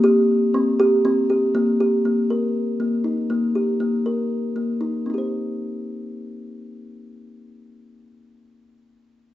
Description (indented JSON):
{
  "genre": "contemporary instrumental, contemporary",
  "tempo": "239 BPM (eighths)",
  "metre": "7/8",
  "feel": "straight",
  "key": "C minor",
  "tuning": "A4 = 440 Hz",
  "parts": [
    { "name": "kalimba", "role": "solo", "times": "0.0-8.4 s", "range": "Bb3 to C5", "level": "-19 LUFS", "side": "equal", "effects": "none" }
  ],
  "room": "moderate recital hall reverb, RT60 1.6 s",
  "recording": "dark, warm production, nothing above 7.8 kHz",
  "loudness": "-19 LUFS",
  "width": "side -14 dB against mid",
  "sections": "0.0-1.5 A section; 1.5-5.1 B section; 5.1-8.6 C section",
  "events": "none",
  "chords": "0.0 Gsus4; 1.5 N.C.; 5.1 Cm"
}